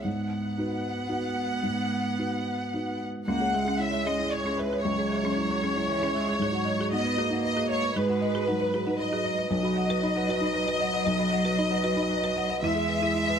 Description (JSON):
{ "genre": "neoclassical piano and strings", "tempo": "115 BPM", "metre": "3/4", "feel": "rubato", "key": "C# dorian", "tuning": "A4 = 440 Hz", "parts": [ { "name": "rich cello", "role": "second line", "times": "0.0-13.4 s", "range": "E3 to B3", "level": "-33 LUFS", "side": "right 4 dB", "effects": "none" }, { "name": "felt-muted upright piano", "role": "accompaniment", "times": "0.0-13.4 s", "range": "B1 to E5", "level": "-29 LUFS", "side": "equal", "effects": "none" }, { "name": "rich studio violin section", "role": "melody", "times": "0.1-13.4 s", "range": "B4 to F#5", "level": "-29 LUFS", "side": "left 2 dB", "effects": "none" }, { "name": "folk marimba with hard mallets", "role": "arpeggios", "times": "3.3-13.4 s", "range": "C#4 to B5", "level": "-35 LUFS", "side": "left 1 dB", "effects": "slapback echo" } ], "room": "light reverb", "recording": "none", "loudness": "-25 LUFS", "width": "side -7 dB against mid", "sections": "0.0-3.3 A section; 3.3-13.4 B section", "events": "none", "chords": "0.1 G#m7; 3.3 C#m; 6.4 G#m7; 9.5 B; 12.6 E", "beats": "| 0.06 0.58 1.10 | 1.64 2.19 2.74 | 3.28 3.81 4.33 | 4.85 5.38 5.90 | 6.42 6.93 7.44 | 7.96 8.47 8.99 | 9.51 10.03 10.55 | 11.06 11.58 12.10 | 12.62 13.15" }